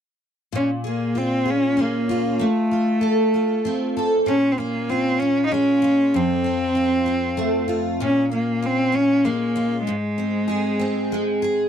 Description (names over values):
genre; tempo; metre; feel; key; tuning
pop; 64 BPM (dotted quarters); 6/8; straight; Bb minor; A4 = 440 Hz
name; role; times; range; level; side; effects
picked steel-string acoustic guitar; accompaniment; 0.5-11.7 s; F2 to A4; -23 LUFS; equal; double-tracked left and right
clear cello; melody; 0.6-11.4 s; Ab3 to Eb4; -20 LUFS; equal; none
room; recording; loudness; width
little or no reverb; dry, close 1970s-style studio recording; -18 LUFS; side -8 dB against mid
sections
0.5-11.7 A section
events
none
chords
0.5 Bbm7; 2.4 F/A; 4.3 Bbm7; 6.1 F; 8.0 Bbm7; 9.9 Ab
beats
| 0.53 1.47 | 2.41 3.34 | 4.27 5.20 | 6.13 7.07 | 8.01 8.95 | 9.88 10.82